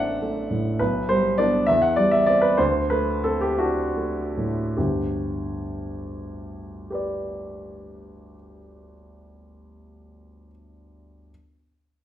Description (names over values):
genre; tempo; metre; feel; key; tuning
classical, romantic character piece for solo piano; 47-70 BPM (dotted quarters); 6/8; rubato; G major; A4 = 440 Hz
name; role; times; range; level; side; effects
warm grand piano; solo; 0.0-11.3 s; G1 to F#5; -21 LUFS; equal; none
room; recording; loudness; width
wet large studio reverb, RT60 0.8 s; heard from further back in the room; -20 LUFS; side -11 dB against mid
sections
0.0-4.8 A section; 4.8-9.1 B section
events
slowing down 0.0-4.8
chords
0.0 D7/A; 0.8 G/B; 1.7 C/E; 2.6 D7; 4.8 G